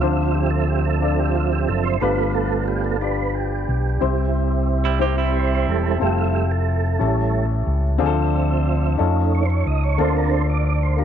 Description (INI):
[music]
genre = gospel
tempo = 60 BPM (dotted quarters)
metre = 6/8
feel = straight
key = F major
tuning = A4 = 443 Hz
[part]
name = dark upright piano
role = accompaniment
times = 0.0-11.0 s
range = G2 to D5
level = -25 LUFS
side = left 12 dB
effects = none
[part]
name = dark French horn section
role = sustained chords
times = 0.0-11.0 s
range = E3 to E5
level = -33 LUFS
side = right 10 dB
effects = none
[part]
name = tonewheel organ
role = sustained chords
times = 0.0-11.0 s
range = F3 to E5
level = -24 LUFS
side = right 10 dB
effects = slow rotary speaker, chorus vibrato
[part]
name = fingered electric bass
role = bass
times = 0.0-11.0 s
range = E1 to F2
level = -20 LUFS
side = equal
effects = none
[part]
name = semi-hollow electric guitar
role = second line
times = 4.9-6.0 s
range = G3 to G4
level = -27 LUFS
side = right 9 dB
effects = none
[sound]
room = light reverb, small room ambience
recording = 1960s-style stereo with parts hard left and right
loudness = -18 LUFS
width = side -9 dB against mid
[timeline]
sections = 0.0-11.0 A section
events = tonewheel organ solo 0.0-11.0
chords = 0.0 Dm7; 2.0 G7; 4.0 C; 6.0 Fmaj7; 7.0 A7; 8.0 Dm7; 9.0 Faug7; 10.0 Bbmaj7/D